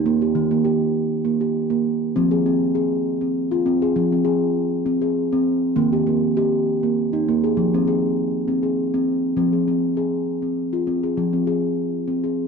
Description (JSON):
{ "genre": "world meditative, meditative tuned percussion", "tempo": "100 BPM", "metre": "3/4", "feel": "swing 53% on 16ths", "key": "F minor", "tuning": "A4 = 440 Hz", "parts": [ { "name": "steel tongue drum", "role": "solo", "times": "0.0-12.5 s", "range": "Eb3 to Ab4", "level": "-18 LUFS", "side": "equal", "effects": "none" } ], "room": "wet recital hall reverb, RT60 1.4 s, small room ambience", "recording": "dark, warm production", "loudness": "-18 LUFS", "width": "side -5 dB against mid", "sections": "0.0-9.4 A section; 9.4-12.5 B section", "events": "none", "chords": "0.0 Eb; 2.2 Fm; 5.8 Eb; 7.6 Fm", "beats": "| 0.35 0.95 1.55 | 2.15 2.75 3.35 | 3.96 4.55 5.16 | 5.75 6.35 6.95 | 7.55 8.15 8.76 | 9.36 9.96 10.56 | 11.16 11.77 12.37" }